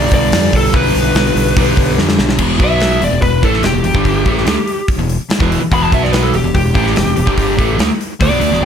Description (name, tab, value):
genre	hard rock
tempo	145 BPM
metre	4/4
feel	straight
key	E minor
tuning	A4 = 440 Hz
part	lead guitar through a small cranked amp	melody	0.0-8.6 s	G4 to B5	-17 LUFS	left 1 dB	overdrive, slapback echo
part	overdriven semi-hollow guitar	riff	0.0-8.7 s	E2 to D4	-19 LUFS	right 13 dB	none
part	sludgy distorted guitar	riff	0.0-8.7 s	E2 to D4	-18 LUFS	left 9 dB	overdrive
part	growling fingered electric bass	bass	0.0-8.7 s	E1 to F2	-18 LUFS	equal	overdrive
part	gated 80s drum kit	drums	0.1-8.6 s	crash cymbal, hi-hat, kick drum, snare drum	-16 LUFS	equal	none
room	light reverb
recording	none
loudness	-11 LUFS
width	side -8 dB against mid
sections	0.0-2.4 A section; 2.4-8.7 B section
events	drum fill 2.0-2.4; lead electric guitar solo 2.4-8.7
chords	0.0 G/B; 2.4 E5; 2.6 B5; 3.0 Em; 5.9 B5; 6.3 Em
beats	0.33 | 0.74 1.16 1.57 1.98 | 2.40 2.81 3.23 3.64 | 4.05 4.47 4.89 5.30 | 5.72 6.13 6.55 6.96 | 7.38 7.79 8.21 8.62